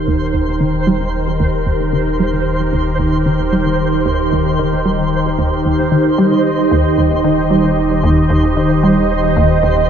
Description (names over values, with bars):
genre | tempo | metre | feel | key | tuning
ambient, sequencer-driven space music | 113 BPM | 4/4 | straight | Eb major | A4 = 440 Hz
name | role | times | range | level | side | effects
phased analog pad | sustained chords | 0.0-9.9 s | Eb3 to Eb5 | -15 LUFS | right 1 dB | phaser, chorus
round analog bass | bass | 0.0-9.9 s | Eb1 | -22 LUFS | left 1 dB | none
twinkling granular texture | texture | 0.0-9.9 s | C5 | -21 LUFS | right 1 dB | built-in reverb
resonant blip pluck | riff | 0.1-9.9 s | Eb2 to G3 | -17 LUFS | equal | chorus, tape echo
room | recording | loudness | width
moderate plate reverb, RT60 3.1 s | cassette tape | -12 LUFS | side -8 dB against mid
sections
0.0-9.9 A section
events
filter sweep on synth arpeggio sound 0.0-9.9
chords
0.0 Eb